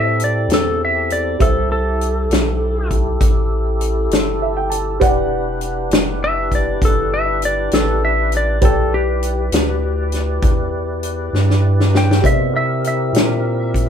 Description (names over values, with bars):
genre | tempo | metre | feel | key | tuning
slow blues | 66 BPM (dotted quarters) | 12/8 | straight | E minor | A4 = 439 Hz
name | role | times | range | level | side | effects
clean lap steel guitar | melody | 0.0-13.9 s | G4 to G5 | -20 LUFS | left 1 dB | none
warm upright piano | accompaniment | 0.0-13.9 s | G4 to A5 | -24 LUFS | right 1 dB | none
tonewheel organ | sustained chords | 0.0-13.9 s | G#3 to D5 | -23 LUFS | left 1 dB | slow rotary speaker, overdrive, chorus vibrato
round analog bass | bass | 0.0-13.9 s | E1 to C3 | -20 LUFS | equal | none
natural country drum kit | drums | 0.2-13.9 s | hi-hat, kick drum, snare drum | -18 LUFS | equal | none
room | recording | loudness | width
wet small room reverb, RT60 0.5 s | band playing live in one room | -15 LUFS | side -8 dB against mid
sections
0.0-13.9 A section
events
upright piano fill 4.1-5.0; drum fill 11.3-12.2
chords
0.0 Am7; 5.0 Em7; 12.2 C7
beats
0.50 | 1.40 2.30 3.21 4.11 | 5.01 5.92 6.82 7.72 | 8.62 9.53 10.43 11.33 | 12.23 13.14